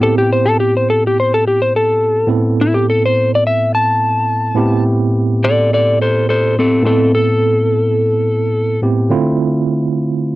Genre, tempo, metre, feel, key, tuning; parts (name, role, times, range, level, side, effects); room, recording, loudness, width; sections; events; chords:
blues; 105 BPM; 4/4; swing 54% on 16ths; A minor; A4 = 440 Hz
electric slide guitar; melody; 0.0-8.8 s; C4 to A5; -14 LUFS; left 1 dB
tine electric piano; accompaniment; 0.0-10.4 s; A2 to A4; -15 LUFS; right 2 dB; medium stereo tremolo
light reverb; dry, close 1970s-style studio recording; -12 LUFS; side -17 dB against mid
0.0-10.4 A section
electric slide guitar solo 0.0-10.4
0.0 Am7; 9.1 Dm7